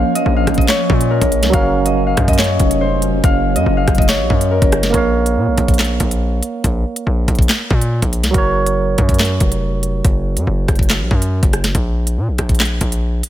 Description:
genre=hip hop, drill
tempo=141 BPM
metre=4/4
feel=half-time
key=unclear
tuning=A4 = 445 Hz
part: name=Celtic harp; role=melody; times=0.0-6.6 s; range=Bb4 to F5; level=-19 LUFS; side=left 2 dB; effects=none
part: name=barky tine electric piano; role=accompaniment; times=0.0-11.8 s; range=Gb3 to F5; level=-21 LUFS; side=right 5 dB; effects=overdrive
part: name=ethereal airy pad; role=sustained chords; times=0.0-4.9 s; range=F3 to Db4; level=-22 LUFS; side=equal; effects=ensemble chorus, built-in reverb
part: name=distorted 808-style bass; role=bass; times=0.0-13.2 s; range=F1 to Bb2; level=-18 LUFS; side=equal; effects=distortion
part: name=drill drum kit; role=drums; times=0.2-13.3 s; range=handclaps, hi-hat, kick drum, rim click, snare drum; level=-16 LUFS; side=equal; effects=none
room=little or no reverb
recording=none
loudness=-13 LUFS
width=side -12 dB against mid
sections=0.0-4.9 A section; 4.9-13.3 B section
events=none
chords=0.0 Bbm; 1.5 Gb; 4.9 Bbm; 8.3 Gb; 11.7 N.C.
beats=0.26 0.68 1.11 | 1.53 1.96 2.39 2.81 | 3.24 3.66 4.09 4.51 | 4.94 5.37 5.79 6.22 | 6.64 7.07 7.49 7.92 | 8.34 8.77 9.20 9.62 | 10.05 10.47 10.90 11.32 | 11.75 12.17 12.60 13.03

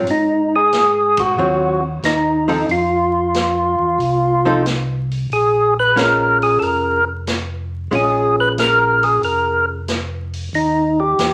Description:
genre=soul jazz organ trio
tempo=92 BPM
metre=4/4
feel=swing 69% on 8ths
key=unclear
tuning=A4 = 440 Hz
part: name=archtop guitar, miked and amplified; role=accompaniment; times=0.0-9.8 s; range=F3 to A4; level=-23 LUFS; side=equal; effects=none
part: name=mellow tonewheel organ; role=bass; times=0.0-11.3 s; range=F1 to Ab2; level=-27 LUFS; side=equal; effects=slow rotary speaker
part: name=percussive tonewheel organ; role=melody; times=0.1-11.3 s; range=Eb4 to Cb5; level=-17 LUFS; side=equal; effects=overdrive, slow rotary speaker
part: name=swinging big-band drum kit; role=drums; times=0.1-11.3 s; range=hi-hat, kick drum, ride cymbal, snare drum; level=-28 LUFS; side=equal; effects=none
room=moderate large studio reverb, RT60 0.8 s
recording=vinyl crackle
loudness=-17 LUFS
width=mono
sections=0.0-11.3 A section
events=band accent 1.1-1.4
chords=0.1 Ab6; 2.7 F5; 5.3 Bbm7; 10.5 Eb5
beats=| 0.08 0.73 1.39 2.04 | 2.70 3.35 4.00 4.66 | 5.31 5.97 6.62 7.27 | 7.93 8.58 9.23 9.88 | 10.53 11.19

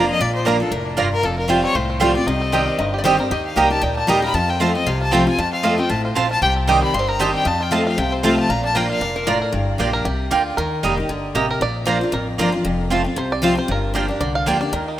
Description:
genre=bluegrass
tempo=231 BPM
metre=4/4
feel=swing 55% on 8ths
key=unclear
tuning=A4 = 440 Hz
part: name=clear fiddle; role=melody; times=0.0-9.2 s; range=D4 to D6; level=-23 LUFS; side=left 3 dB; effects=none
part: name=picked steel-string acoustic guitar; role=accompaniment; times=0.0-15.0 s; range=F2 to G4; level=-21 LUFS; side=left 2 dB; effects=none
part: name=mandolin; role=stabs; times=0.0-14.6 s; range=A3 to Bb5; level=-22 LUFS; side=right 5 dB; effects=none
part: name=upright bass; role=bass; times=0.0-15.0 s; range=F1 to F2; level=-26 LUFS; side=equal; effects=none
part: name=bluegrass banjo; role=melody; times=0.5-15.0 s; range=Bb3 to F5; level=-27 LUFS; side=right 2 dB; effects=none
part: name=lap resonator guitar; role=second line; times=2.5-3.2, 9.2-9.5 s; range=Bb4 to G5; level=-27 LUFS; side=left 4 dB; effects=none
room=moderate lush hall reverb, RT60 2.6 s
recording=rough home demo mix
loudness=-16 LUFS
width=side -12 dB against mid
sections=0.0-1.2 A section; 1.2-9.5 A section; 9.5-15.0 A section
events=fiddle solo 0.0-9.5; five-string banjo solo 9.5-15.0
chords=0.0 Bb; 1.2 Fadd9; 2.3 Cm; 3.3 Eb; 4.3 F; 6.4 Cm; 7.5 F; 8.5 Bb; 9.5 Gm7; 10.6 Eb; 11.6 Bb; 12.7 F; 13.7 Gm7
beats=| 0.20 0.46 0.72 0.98 | 1.24 1.50 1.76 2.02 | 2.27 2.53 2.79 3.05 | 3.31 3.57 3.83 4.09 | 4.35 4.61 4.87 5.13 | 5.38 5.64 5.90 6.16 | 6.42 6.68 6.94 7.20 | 7.46 7.72 7.98 8.24 | 8.50 8.76 9.02 9.28 | 9.54 9.80 10.06 10.31 | 10.57 10.83 11.09 11.35 | 11.61 11.87 12.13 12.39 | 12.65 12.91 13.17 13.43 | 13.69 13.95 14.21 14.47 | 14.73 14.99

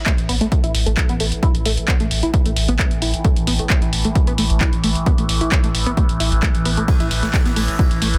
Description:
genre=driving peak-time techno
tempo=132 BPM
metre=4/4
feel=straight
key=unclear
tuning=A4 = 440 Hz
part: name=overtone-sweeping drone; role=drone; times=0.0-8.2 s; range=A2 to E3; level=-29 LUFS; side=equal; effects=chorus, built-in reverb, sidechain pumping
part: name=tight sequenced synth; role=riff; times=0.1-8.1 s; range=A3 to E4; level=-27 LUFS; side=equal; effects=chorus, cassette tape, sidechain pumping, digital delay
part: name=electronic kick drum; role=drums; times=0.1-7.9 s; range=none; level=-21 LUFS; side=equal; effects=none
part: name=punchy analog drum machine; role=drums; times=0.1-8.2 s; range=handclaps, hi-hat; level=-26 LUFS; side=equal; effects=none
part: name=warm sub bass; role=bass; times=0.2-8.2 s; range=A1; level=-24 LUFS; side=equal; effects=tube saturation, sidechain pumping, low-pass filter
part: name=jazz brush drum kit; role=drums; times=6.9-8.1 s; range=hi-hat, ride cymbal, snare drum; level=-36 LUFS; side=equal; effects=sidechain pumping on cymbals, high-pass filter on cymbals, sidechain pumping on hats, high-pass filter on hats, soft clipping on snare, high-pass filter on snare, high-pass filter on room
room=light reverb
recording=dense, heavily limited modern master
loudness=-18 LUFS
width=mono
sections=0.0-8.2 A section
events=none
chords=0.0 A5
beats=0.06 0.52 0.97 | 1.43 1.88 2.34 2.79 | 3.25 3.70 4.16 4.61 | 5.06 5.52 5.97 6.43 | 6.88 7.34 7.79

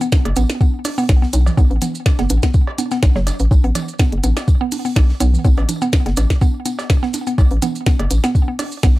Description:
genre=minimal techno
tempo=124 BPM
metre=4/4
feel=swing 54% on 16ths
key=unclear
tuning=A4 = 442 Hz
part: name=mallet-like synth pluck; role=riff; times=0.0-8.9 s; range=F#3 to B3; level=-23 LUFS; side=right 1 dB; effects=chorus, sidechain pumping, tape echo
part: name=tight metal drum kit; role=drums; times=0.0-9.0 s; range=hi-hat, snare drum, tambourine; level=-38 LUFS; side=right 2 dB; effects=none
part: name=maracas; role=percussion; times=0.0-8.9 s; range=none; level=-31 LUFS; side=right 5 dB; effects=none
part: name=electronic kick drum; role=drums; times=0.1-8.9 s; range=none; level=-14 LUFS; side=equal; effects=none
part: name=minimal click drum kit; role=drums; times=0.1-8.9 s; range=hi-hat, snare drum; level=-22 LUFS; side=equal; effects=none
part: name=congas and cowbell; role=percussion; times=0.1-8.9 s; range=none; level=-27 LUFS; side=right 3 dB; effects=overdrive, tape echo
part: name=hollow knocking FM bass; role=bass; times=0.3-9.0 s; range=F#1 to B1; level=-16 LUFS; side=equal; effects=sidechain pumping
room=little or no reverb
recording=dry, gritty hardware recording, transformer saturation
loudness=-14 LUFS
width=side -18 dB against mid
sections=0.0-9.0 A section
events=none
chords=0.0 B5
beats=0.12 0.61 1.09 | 1.57 2.06 2.54 3.03 | 3.51 3.99 4.48 4.96 | 5.45 5.93 6.41 6.90 | 7.38 7.87 8.35 8.83

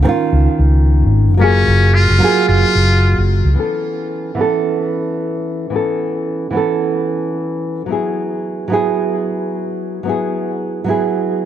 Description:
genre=sunset chillout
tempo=111 BPM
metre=4/4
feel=swing 58% on 16ths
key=unclear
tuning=A4 = 440 Hz
part: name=nylon-string guitar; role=accompaniment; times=0.0-11.5 s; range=D#3 to A4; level=-17 LUFS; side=moving between left 4 dB and right 6 dB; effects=auto-pan, low-pass filter, tape echo
part: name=hollow-body short-scale fingered electric bass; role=bass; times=0.0-3.5 s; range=F#1 to C#2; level=-12 LUFS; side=equal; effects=none
part: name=trumpet with metal mute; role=melody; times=1.4-3.3 s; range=C#4 to E#4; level=-17 LUFS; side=left 2 dB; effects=ping-pong delay
room=light reverb, small room ambience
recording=none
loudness=-14 LUFS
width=side -11 dB against mid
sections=0.0-3.6 A section; 3.6-11.5 B section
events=none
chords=0.0 C#add9; 1.4 F#maj9; 3.6 B9sus4; 7.9 F#9sus4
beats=0.32 0.86 | 1.40 1.94 2.48 3.02 | 3.56 4.11 4.65 5.19 | 5.73 6.27 6.81 7.35 | 7.89 8.43 8.97 9.51 | 10.05 10.59 11.13

